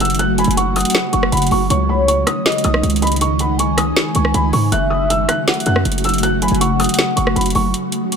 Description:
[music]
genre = hip hop, trap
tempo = 159 BPM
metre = 4/4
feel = half-time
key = unclear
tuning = A4 = 441 Hz
[part]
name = felt-muted upright piano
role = melody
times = 0.0-7.7 s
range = B5 to F#6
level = -21 LUFS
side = right 1 dB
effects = none
[part]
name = ethereal airy pad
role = sustained chords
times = 0.0-8.2 s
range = C#3 to C#5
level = -19 LUFS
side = right 1 dB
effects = ensemble chorus, built-in reverb
[part]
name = hard-hitting 808-style bass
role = bass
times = 0.0-7.7 s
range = F#1 to G#2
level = -19 LUFS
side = equal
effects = none
[part]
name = trap drum kit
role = drums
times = 0.0-8.2 s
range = hi-hat, rim click, snare drum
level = -19 LUFS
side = right 1 dB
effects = none
[part]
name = warm velvety synth lead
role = second line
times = 0.4-7.7 s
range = C#5 to G#5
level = -23 LUFS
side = left 2 dB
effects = chorus, digital delay
[sound]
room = light reverb, digital ambience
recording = none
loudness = -14 LUFS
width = side -6 dB against mid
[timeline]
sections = 0.0-7.7 A section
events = break 7.7-8.2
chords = 0.0 F#m; 1.7 C#sus2; 4.7 F#m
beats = | 0.19 0.57 0.95 1.32 | 1.70 2.08 2.46 2.83 | 3.21 3.59 3.97 4.34 | 4.72 5.10 5.47 5.85 | 6.23 6.61 6.99 7.36 | 7.74 8.12

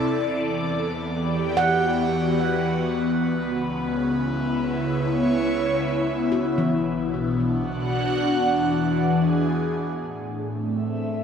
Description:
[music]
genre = ambient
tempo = 73 BPM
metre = 4/4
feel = straight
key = unclear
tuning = A4 = 440 Hz
[part]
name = airy breathy pad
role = sustained chords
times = 0.0-11.2 s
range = A2 to F#5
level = -22 LUFS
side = equal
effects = chorus, phaser
[part]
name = clear studio double bass section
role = bass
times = 0.0-9.9 s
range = B1 to E2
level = -38 LUFS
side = equal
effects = none
[part]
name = handpan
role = arpeggios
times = 1.6-8.4 s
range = E3 to F#5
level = -28 LUFS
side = right 1 dB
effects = tape echo
[sound]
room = wet lush hall reverb, RT60 2.9 s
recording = none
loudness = -21 LUFS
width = side -7 dB against mid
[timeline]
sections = 0.0-10.0 A section; 10.0-11.2 B section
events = fade-out on double bass section 0.0-10.0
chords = 0.1 Em7; 3.4 C#m7; 6.7 Bm; 8.3 E7; 10.0 Am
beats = | 0.10 0.92 1.75 2.57 | 3.39 4.21 5.03 5.86 | 6.68 7.50 8.32 9.14 | 9.96 10.79

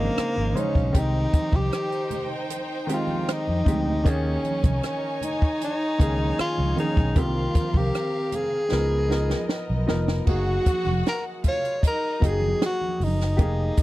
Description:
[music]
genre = lush 1970s-style soul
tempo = 77 BPM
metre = 4/4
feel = straight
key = unclear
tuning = A4 = 440 Hz
[part]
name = breathy tenor saxophone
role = melody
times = 0.0-13.8 s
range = Bb3 to Db5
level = -27 LUFS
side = left 1 dB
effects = none
[part]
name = warm symphonic violin section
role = second line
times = 0.0-13.8 s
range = Cb4 to Ab5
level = -33 LUFS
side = equal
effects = none
[part]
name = clear grand piano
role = accompaniment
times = 0.0-13.8 s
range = Db3 to C5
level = -30 LUFS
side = equal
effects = none
[part]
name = fingered electric bass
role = bass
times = 0.0-13.7 s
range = F1 to F2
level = -25 LUFS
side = equal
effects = none
[part]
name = compact cocktail drum kit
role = drums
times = 0.2-13.8 s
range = crash cymbal, hi-hat, kick drum, rim click, snare drum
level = -22 LUFS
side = equal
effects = none
[part]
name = congas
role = percussion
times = 0.4-13.8 s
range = none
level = -34 LUFS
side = right 4 dB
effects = none
[sound]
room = little or no reverb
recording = dry, close 1970s-style studio recording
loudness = -21 LUFS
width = side -16 dB against mid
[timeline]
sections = 0.0-10.3 A section; 10.3-13.8 B section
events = drum fill 8.7-10.3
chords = 0.0 Bbm11; 0.9 Abmaj7/C; 4.1 Eb7sus4; 7.2 Cm7; 8.7 Db13; 10.3 Gb69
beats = 0.17 | 0.95 1.73 2.50 3.28 | 4.06 4.83 5.61 6.39 | 7.17 7.94 8.72 9.50 | 10.28 11.05 11.83 12.61 | 13.39

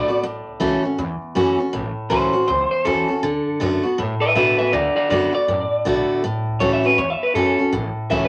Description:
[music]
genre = rockabilly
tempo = 160 BPM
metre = 4/4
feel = swing 62% on 8ths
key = A major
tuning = A4 = 439 Hz
[part]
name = electric guitar through a small old amp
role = melody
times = 0.0-8.3 s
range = F#4 to E5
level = -22 LUFS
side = equal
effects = spring reverb
[part]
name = picked steel-string acoustic guitar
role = accompaniment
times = 0.0-8.3 s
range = E2 to F#4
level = -23 LUFS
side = equal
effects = none
[part]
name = upright bass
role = bass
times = 0.0-8.3 s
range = A1 to B2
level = -32 LUFS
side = equal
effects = none
[sound]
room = moderate studio reverb, RT60 0.5 s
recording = none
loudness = -20 LUFS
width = mono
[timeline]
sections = 0.0-8.3 A section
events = clean electric guitar solo 0.0-8.3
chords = 0.2 A6; 3.2 D6; 6.2 A6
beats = | 0.24 0.61 0.99 1.36 | 1.74 2.11 2.49 2.86 | 3.24 3.61 3.98 4.36 | 4.74 5.11 5.49 5.86 | 6.23 6.61 6.98 7.36 | 7.73 8.11

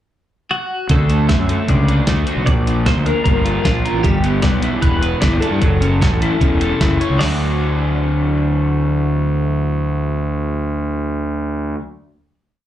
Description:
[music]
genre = indie rock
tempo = 152 BPM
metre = 4/4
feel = straight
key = D major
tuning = A4 = 441 Hz
[part]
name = twelve-string electric guitar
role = melody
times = 0.5-11.7 s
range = F4 to E5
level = -24 LUFS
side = equal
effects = phaser, slapback echo, digital delay
[part]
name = crunchy overdriven guitar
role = riff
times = 0.9-11.8 s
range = Bb2 to D5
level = -20 LUFS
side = left 1 dB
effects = none
[part]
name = fuzz fingered electric bass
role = bass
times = 0.9-11.7 s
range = E1 to G2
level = -18 LUFS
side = equal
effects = overdrive
[part]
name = clean 12-bit digital drum machine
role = drums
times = 0.9-7.3 s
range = hi-hat, kick drum, snare drum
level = -17 LUFS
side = equal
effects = none
[sound]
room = little or no reverb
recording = live gig heard through the venue's PA, club reverb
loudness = -14 LUFS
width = side -12 dB against mid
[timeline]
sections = 0.0-0.9 pickup bar; 0.9-7.2 interlude; 7.2-10.4 final chord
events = none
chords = 0.0 N.C.; 0.9 D; 2.5 Bb; 4.0 G6; 5.6 F#m7; 7.2 D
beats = 0.12 0.51 | 0.90 1.29 1.69 2.08 | 2.47 2.86 3.26 3.65 | 4.04 4.44 4.83 5.23 | 5.62 6.02 6.41 6.81 | 7.20 7.60 8.00 8.39 | 8.79 9.18 9.58 9.97

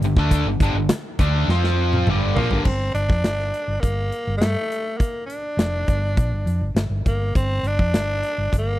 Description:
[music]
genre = classic rock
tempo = 102 BPM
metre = 4/4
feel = straight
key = G minor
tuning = A4 = 442 Hz
[part]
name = distorted electric guitar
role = riff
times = 0.0-2.7 s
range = G2 to F4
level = -22 LUFS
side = equal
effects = overdrive
[part]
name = hollow-body short-scale fingered electric bass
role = bass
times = 0.0-8.8 s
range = F1 to G2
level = -22 LUFS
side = equal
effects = none
[part]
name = huge arena drum kit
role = drums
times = 0.0-8.7 s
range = crash cymbal, hi-hat, kick drum, snare drum, toms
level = -23 LUFS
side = equal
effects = none
[part]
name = growling tenor saxophone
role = melody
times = 2.4-8.8 s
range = A3 to D4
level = -25 LUFS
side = equal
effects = slapback echo
[sound]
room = small room reverb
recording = dry, close 1970s-style studio recording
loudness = -19 LUFS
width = side -15 dB against mid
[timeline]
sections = 0.0-2.7 A section; 2.7-8.8 B section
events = drum fill 1.5-2.7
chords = 0.0 G5; 1.5 F5; 2.1 Gm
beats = | 0.31 0.89 1.48 2.07 | 2.65 3.24 3.83 4.42 | 5.00 5.59 6.18 6.76 | 7.35 7.94 8.52

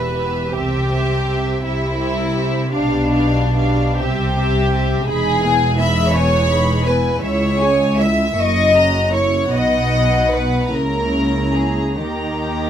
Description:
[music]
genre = classical, slow romantic movement for string orchestra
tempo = 45-58 BPM (dotted quarters)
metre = 6/8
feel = rubato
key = unclear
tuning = A4 = 440 Hz
[part]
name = rich studio violin section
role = melody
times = 0.0-12.7 s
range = E5 to C#6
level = -26 LUFS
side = left 2 dB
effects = none
[part]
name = clear studio violin section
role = second line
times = 0.0-12.7 s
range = D4 to E5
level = -19 LUFS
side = left 1 dB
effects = none
[part]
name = warm studio viola section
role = accompaniment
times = 0.0-12.7 s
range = G#3 to G#4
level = -24 LUFS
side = right 3 dB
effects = none
[part]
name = dark studio double bass section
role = bass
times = 0.0-12.7 s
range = E1 to D#2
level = -22 LUFS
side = right 1 dB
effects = none
[part]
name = warm studio cello section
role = bass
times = 0.0-12.7 s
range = C#2 to D#3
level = -21 LUFS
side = equal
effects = none
[sound]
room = light reverb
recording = none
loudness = -15 LUFS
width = side -9 dB against mid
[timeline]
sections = 0.0-12.7 A section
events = none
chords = 0.0 Em; 0.5 C; 2.7 G7/B; 4.0 C; 5.1 Emaj7; 7.2 C#m; 8.4 F#7; 9.5 B; 10.7 A#dim/C#; 12.0 D#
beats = | 0.52 1.64 | 2.74 3.99 | 5.09 6.13 | 7.22 8.36 | 9.52 10.72 | 11.99

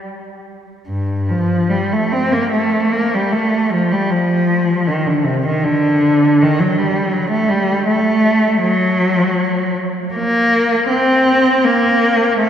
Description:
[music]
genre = classical, free, expressive piece for unaccompanied cello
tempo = 47-82 BPM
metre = 3/4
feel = rubato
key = G minor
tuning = A4 = 440 Hz
[part]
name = warm cello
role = solo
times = 0.9-12.5 s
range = G2 to C4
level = -13 LUFS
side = equal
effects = none
[sound]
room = wet church reverb, RT60 3.4 s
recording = none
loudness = -13 LUFS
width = side -9 dB against mid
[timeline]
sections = 0.9-12.5 A section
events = none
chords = none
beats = | 0.85 1.69 2.52 | 3.33 4.10 4.86 | 5.62 6.40 7.14 | 7.88 8.63 9.40 | 10.14 10.89 11.64 | 12.40

